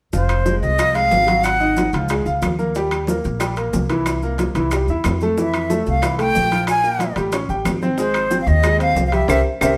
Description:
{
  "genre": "latin, salsa",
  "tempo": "184 BPM",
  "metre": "4/4",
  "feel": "straight",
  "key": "F minor",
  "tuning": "A4 = 440 Hz",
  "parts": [
    { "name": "bright silver concert flute", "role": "melody", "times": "0.1-1.9, 5.4-9.7 s", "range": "C5 to Ab5", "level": "-21 LUFS", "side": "equal", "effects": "none" },
    { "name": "bright upright piano", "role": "accompaniment", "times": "0.1-9.7 s", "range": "E3 to G5", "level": "-25 LUFS", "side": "equal", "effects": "none" },
    { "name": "upright bass", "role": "bass", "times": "0.1-9.7 s", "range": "F1 to F2", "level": "-24 LUFS", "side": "equal", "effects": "none" },
    { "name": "bongos", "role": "percussion", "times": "0.1-9.7 s", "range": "none", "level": "-31 LUFS", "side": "equal", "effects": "none" },
    { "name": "congas", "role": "percussion", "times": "0.1-9.7 s", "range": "none", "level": "-30 LUFS", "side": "equal", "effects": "none" },
    { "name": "maracas", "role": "percussion", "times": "0.1-9.7 s", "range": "none", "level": "-40 LUFS", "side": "equal", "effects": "none" },
    { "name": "claves", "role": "percussion", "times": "0.3-9.7 s", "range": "none", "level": "-32 LUFS", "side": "equal", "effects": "none" },
    { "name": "timbales", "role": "percussion", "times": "0.3-9.7 s", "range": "none", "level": "-31 LUFS", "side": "equal", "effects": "none" }
  ],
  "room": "moderate stone room reverb, RT60 1.1 s",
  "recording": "band playing live in one room",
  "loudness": "-18 LUFS",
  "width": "mono",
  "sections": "0.1-9.8 A section",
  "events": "band accent 9.3-9.8; drum fill 9.6",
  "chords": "0.1 Fm7; 1.4 Ab5; 2.1 Dbadd9; 2.8 Eb6; 4.1 C7; 5.4 Fmaj9; 6.7 Bb5; 7.3 A7; 8.0 Ab"
}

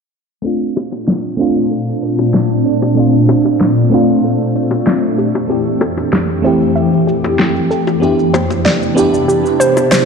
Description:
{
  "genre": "sunset chillout",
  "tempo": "95 BPM",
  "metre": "4/4",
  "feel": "straight",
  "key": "Bb lydian",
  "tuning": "A4 = 442 Hz",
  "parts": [
    { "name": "mellow FM electric piano", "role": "accompaniment", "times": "0.4-10.1 s", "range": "A3 to G4", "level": "-16 LUFS", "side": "moving between left 2 dB and right 4 dB", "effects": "chorus, auto-pan, low-pass filter, tape echo" },
    { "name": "shimmering ambient pad", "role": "sustained chords", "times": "1.1-10.1 s", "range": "F2 to G4", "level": "-15 LUFS", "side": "equal", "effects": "chorus, built-in reverb, phaser, vintage 12-bit sampler grit" },
    { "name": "soft round pluck", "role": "arpeggios", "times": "0.4-10.1 s", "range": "G4 to E5", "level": "-19 LUFS", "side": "right 2 dB", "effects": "chorus, tape echo" },
    { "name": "electronic shaker and snare drum", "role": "drums", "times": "0.5-10.1 s", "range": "none", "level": "-18 LUFS", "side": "left 1 dB", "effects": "overdrive, low-pass filter on perc, studio reverb, low-pass filter on snare" },
    { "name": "bongos", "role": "percussion", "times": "0.8-9.9 s", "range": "none", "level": "-23 LUFS", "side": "left 4 dB", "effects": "none" }
  ],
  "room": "wet concert hall reverb, RT60 2.3 s",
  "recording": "dark, warm production, low-pass filter",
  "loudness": "-11 LUFS",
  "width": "side -5 dB against mid",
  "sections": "0.4-10.1 A section",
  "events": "filter sweep on drum 0.4-10.1; filter sweep on FM electric piano 0.4-10.1; filter sweep on synth pluck 0.4-10.1; filter sweep 0.4-10.1",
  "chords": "0.4 Bbmaj9; 5.2 Fmaj9; 8.0 Cmaj9"
}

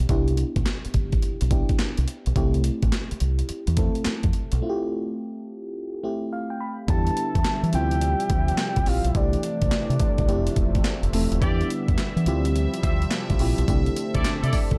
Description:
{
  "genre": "R&B, new jack swing",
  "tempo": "106 BPM",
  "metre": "4/4",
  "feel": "swing 65% on 16ths",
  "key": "unclear",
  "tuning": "A4 = 442 Hz",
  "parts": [
    { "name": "mellow FM electric piano", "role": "accompaniment", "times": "0.0-14.8 s", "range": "A3 to B5", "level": "-32 LUFS", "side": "equal", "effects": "chorus, phaser" },
    { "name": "deep dub fingered electric bass", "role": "bass", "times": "0.0-14.8 s", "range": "Eb1 to E3", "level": "-26 LUFS", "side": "equal", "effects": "none" },
    { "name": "breakbeat sampler-style drum kit", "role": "drums", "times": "0.1-14.8 s", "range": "handclaps, hi-hat, kick drum, snare drum, tambourine", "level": "-27 LUFS", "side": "equal", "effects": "overdrive" },
    { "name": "soft octave-layered synth lead", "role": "melody", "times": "6.9-11.1 s", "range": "D5 to A5", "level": "-31 LUFS", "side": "equal", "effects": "chorus" },
    { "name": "sweeping resonant pad", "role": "sustained chords", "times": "6.9-14.8 s", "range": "C3 to E5", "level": "-33 LUFS", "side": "equal", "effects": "chorus" },
    { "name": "clear horn section", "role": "stabs", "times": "11.4-14.6 s", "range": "E4 to E5", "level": "-36 LUFS", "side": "equal", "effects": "none" }
  ],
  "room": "digital ambience",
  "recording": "dark, warm production",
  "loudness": "-24 LUFS",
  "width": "mono",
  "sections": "0.0-6.9 A section; 6.9-14.8 B section",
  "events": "break 4.6-6.9; FM electric piano fill 6.0-6.9",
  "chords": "0.0 Cmaj7; 2.4 Fmaj9; 6.9 Em7; 7.7 Dm11; 9.1 C69; 10.3 Fmaj7; 11.4 Em7; 12.3 Dm11; 13.7 C69"
}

